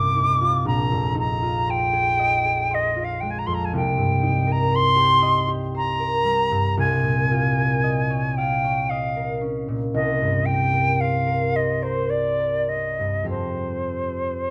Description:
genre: classical, impressionist duo for flute and harp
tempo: 50-60 BPM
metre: 3/4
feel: rubato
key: unclear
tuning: A4 = 441 Hz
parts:
  - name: silver concert flute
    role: melody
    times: 0.0-14.5 s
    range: C5 to D6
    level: -24 LUFS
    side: equal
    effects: none
  - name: concert harp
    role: accompaniment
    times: 0.0-14.5 s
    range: Bb1 to F5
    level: -25 LUFS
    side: equal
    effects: none
room: light reverb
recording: close, detailed microphones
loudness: -22 LUFS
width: mono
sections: 0.0-14.5 A section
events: none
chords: 0.0 Cm11; 0.7 Bb9sus4; 3.7 Cm7; 6.8 Eb9sus4/C; 10.0 Cm7; 13.3 Fmadd9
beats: | 0.65 1.67 2.71 | 3.73 4.74 5.75 | 6.79 7.85 8.91 | 9.96 11.01 12.11 | 13.30 14.49

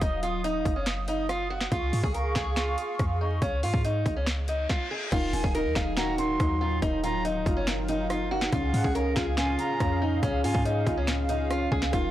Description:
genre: hip hop, trap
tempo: 141 BPM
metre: 4/4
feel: half-time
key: unclear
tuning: A4 = 442 Hz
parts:
  - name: picked acoustic archtop guitar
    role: melody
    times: 0.0-12.1 s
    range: Db4 to Bb4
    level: -31 LUFS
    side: right 1 dB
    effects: low-pass filter
  - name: hollow soft pad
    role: sustained chords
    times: 0.0-12.1 s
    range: Gb3 to Eb6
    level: -34 LUFS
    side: right 2 dB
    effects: chorus
  - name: clean 808-style bass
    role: bass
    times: 0.0-12.1 s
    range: Eb1 to Ab2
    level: -30 LUFS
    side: equal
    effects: none
  - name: trap drum kit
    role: drums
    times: 0.0-12.0 s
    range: crash cymbal, finger snaps, hi-hat, kick drum, rim click, snare drum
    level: -30 LUFS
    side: equal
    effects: overdrive
  - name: reverse cymbal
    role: sound effects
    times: 4.4-5.1 s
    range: none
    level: -40 LUFS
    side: left 3 dB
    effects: none
  - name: dark grand piano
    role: accompaniment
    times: 5.1-12.1 s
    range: Db3 to F5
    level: -32 LUFS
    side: left 3 dB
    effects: low-pass filter
  - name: reedy silver concert flute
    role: second line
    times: 5.3-10.6 s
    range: Gb5 to C6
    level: -35 LUFS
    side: right 2 dB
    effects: tape echo
room: digital ambience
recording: blown-out, overdriven recording, vinyl crackle, overdrive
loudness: -24 LUFS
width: side -13 dB against mid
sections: 0.0-5.1 A section; 5.1-12.1 B section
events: break 0.0-5.1; reverse cymbal 4.4-5.1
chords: 0.0 Ebmadd9; 1.7 Db; 5.1 Ebmadd9; 8.5 Db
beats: | 0.01 0.44 0.87 1.29 | 1.72 2.14 2.57 2.99 | 3.42 3.85 4.27 4.70 | 5.12 5.55 5.97 6.40 | 6.82 7.25 7.67 8.10 | 8.53 8.95 9.38 9.80 | 10.23 10.65 11.08 11.50 | 11.93

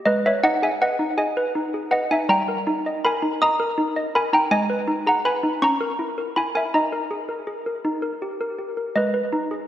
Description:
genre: classical, lullaby for handbells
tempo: 54 BPM (dotted quarters)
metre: 6/8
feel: straight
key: G# minor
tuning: A4 = 440 Hz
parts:
  - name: malleted handbells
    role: solo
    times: 0.0-9.7 s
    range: G3 to D#6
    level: -20 LUFS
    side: equal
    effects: tape echo
room: wet lush hall reverb, RT60 2.1 s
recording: dreamy mix soaked in reverb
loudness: -20 LUFS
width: side -11 dB against mid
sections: 0.1-9.7 A section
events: none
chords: 0.1 G#m; 2.3 D#/G; 4.5 G#m; 5.6 A#dim/C#; 6.7 D#sus4; 7.8 D#; 9.0 G#m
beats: | 0.07 1.19 | 2.29 3.40 | 4.51 5.62 | 6.73 7.85 | 8.96

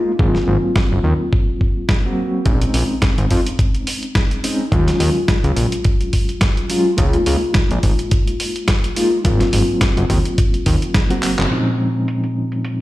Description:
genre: nu-disco, nu disco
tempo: 106 BPM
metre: 4/4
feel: swing 56% on 16ths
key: Bb minor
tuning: A4 = 441 Hz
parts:
  - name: reed electric piano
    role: accompaniment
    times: 0.0-12.8 s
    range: Bb2 to Gb4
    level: -20 LUFS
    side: left 1 dB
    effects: fast tremolo, sidechain pumping, digital delay
  - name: fat analog bass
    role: bass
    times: 0.2-11.5 s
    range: Gb1 to F2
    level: -16 LUFS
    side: equal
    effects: tube saturation
  - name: electronic kick drum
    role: drums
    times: 0.2-11.1 s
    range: none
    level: -17 LUFS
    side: equal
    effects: none
  - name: dusty soul sampler-style drum kit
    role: drums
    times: 0.3-12.8 s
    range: handclaps, hi-hat, snare drum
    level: -23 LUFS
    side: equal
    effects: low-pass filter on snare, low-pass filter on hats
room: light reverb, digital ambience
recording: played on a big sound system in a bare room, stone room reverb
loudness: -15 LUFS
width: side -16 dB against mid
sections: 0.0-11.5 A section; 11.5-12.8 B section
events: drum fill 11.2; band accent 11.4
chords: 0.2 Ab13; 2.5 Bbm11; 4.7 Ebm11; 7.0 Db69; 9.3 Ab13; 11.5 Bbm11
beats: | 0.19 0.76 1.33 1.89 | 2.46 3.02 3.59 4.16 | 4.72 5.29 5.86 6.42 | 6.99 7.55 8.12 8.69 | 9.25 9.82 10.38 10.95 | 11.52 12.08 12.65

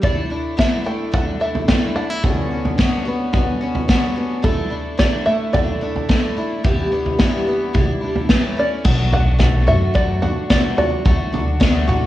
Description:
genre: indie folk with a building arrangement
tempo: 109 BPM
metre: 4/4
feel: straight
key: unclear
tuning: A4 = 440 Hz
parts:
  - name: open-back banjo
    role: melody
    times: 0.0-11.6 s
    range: A4 to G5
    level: -23 LUFS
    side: right 1 dB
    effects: none
  - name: fingerpicked plugged-in steel-string acoustic guitar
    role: accompaniment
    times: 0.0-12.1 s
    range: D2 to F#4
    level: -25 LUFS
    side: equal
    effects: none
  - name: picked twelve-string acoustic guitar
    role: accompaniment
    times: 0.0-12.1 s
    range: G2 to F#4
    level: -24 LUFS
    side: left 3 dB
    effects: none
  - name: unplugged drum kit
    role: drums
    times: 0.0-12.0 s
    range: crash cymbal, kick drum, snare drum, toms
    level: -18 LUFS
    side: equal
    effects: none
  - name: upright bass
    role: bass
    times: 8.8-12.1 s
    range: A1 to F#2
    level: -18 LUFS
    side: equal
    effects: none
room: light reverb, small room ambience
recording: worn, warbling old tape, cassette tape, warbly pitch drift, studio reverb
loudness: -16 LUFS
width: side -14 dB against mid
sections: 0.0-8.8 A section; 8.8-12.1 B section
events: none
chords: 0.0 Dsus2; 2.2 Bmadd9/D; 4.4 Dsus2; 6.6 G6; 7.7 Cadd9; 8.3 A; 8.8 Bm7; 11.1 D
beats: | 0.03 0.58 1.13 1.68 | 2.23 2.79 3.34 3.89 | 4.44 4.99 5.54 6.09 | 6.64 7.19 7.75 8.30 | 8.85 9.40 9.95 10.50 | 11.05 11.61

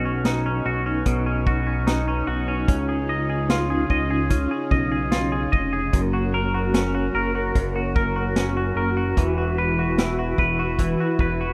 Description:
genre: dream pop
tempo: 74 BPM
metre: 4/4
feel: straight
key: B major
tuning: A4 = 440 Hz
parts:
  - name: ensemble organ-string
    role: sustained chords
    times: 0.0-11.5 s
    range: C#3 to B4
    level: -29 LUFS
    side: equal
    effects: ensemble chorus
  - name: twangy electric guitar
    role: arpeggios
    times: 0.0-11.5 s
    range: F#2 to D#5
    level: -27 LUFS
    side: equal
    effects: analog chorus, digital delay
  - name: fat analog bass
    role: bass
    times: 0.0-11.5 s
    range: E1 to C#2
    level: -28 LUFS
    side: equal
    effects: none
  - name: vintage drum kit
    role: drums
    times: 0.2-11.4 s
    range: hi-hat, kick drum, snare drum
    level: -25 LUFS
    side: equal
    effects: none
room: light reverb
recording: rough home demo mix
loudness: -23 LUFS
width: mono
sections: 0.0-11.5 A section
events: none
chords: 0.0 Badd9; 2.7 C#add9; 5.9 F#; 9.2 Esus2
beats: 0.25 1.06 1.87 | 2.68 3.49 4.30 5.11 | 5.92 6.74 7.55 8.36 | 9.17 9.98 10.79

